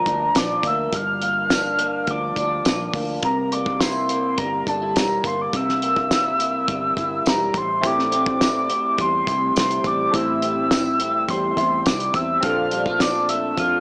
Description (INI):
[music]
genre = indie pop, bedroom pop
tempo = 104 BPM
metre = 4/4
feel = straight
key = unclear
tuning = A4 = 442 Hz
[part]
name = soft octave-layered synth lead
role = melody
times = 0.0-13.8 s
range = A5 to F6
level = -21 LUFS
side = equal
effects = lush chorus, cassette tape
[part]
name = electric guitar through a small old amp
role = accompaniment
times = 0.0-13.8 s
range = G2 to E4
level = -26 LUFS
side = equal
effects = analog chorus, warbly pitch drift, cassette tape
[part]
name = vintage muted fingered electric bass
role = bass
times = 0.1-13.8 s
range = E1 to F2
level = -34 LUFS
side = equal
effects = transformer saturation
[part]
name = cloth-damped thuddy drum kit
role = drums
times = 0.1-13.7 s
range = hi-hat, kick drum, snare drum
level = -24 LUFS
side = equal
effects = cassette tape
[part]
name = tambourine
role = percussion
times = 0.4-13.1 s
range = none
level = -34 LUFS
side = equal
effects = none
[part]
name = chorused retro synth keys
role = accompaniment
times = 7.8-13.8 s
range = A3 to A4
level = -26 LUFS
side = equal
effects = cassette tape
[sound]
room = light reverb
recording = home recording on cassette, small speaker sound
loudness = -18 LUFS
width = side -37 dB against mid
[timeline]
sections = 0.0-13.8 A section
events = none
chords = 0.0 Gm7; 3.2 C7; 7.5 Am7; 12.4 Bbmaj7